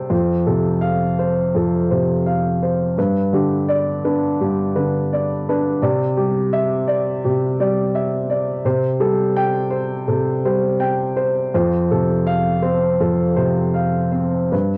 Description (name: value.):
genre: neoclassical minimalist piano.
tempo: 84 BPM.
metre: 4/4.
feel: rubato.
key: unclear.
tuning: A4 = 437 Hz.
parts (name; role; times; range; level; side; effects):
warm upright piano; solo; 0.0-14.8 s; F2 to A6; -19 LUFS; equal; cassette tape.
room: moderate studio reverb, RT60 0.6 s.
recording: home recording on cassette.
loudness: -19 LUFS.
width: mono.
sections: 0.0-14.8 A section.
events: none.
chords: 0.1 F; 3.0 G; 5.8 Cadd9; 8.6 Am7/C; 11.5 F.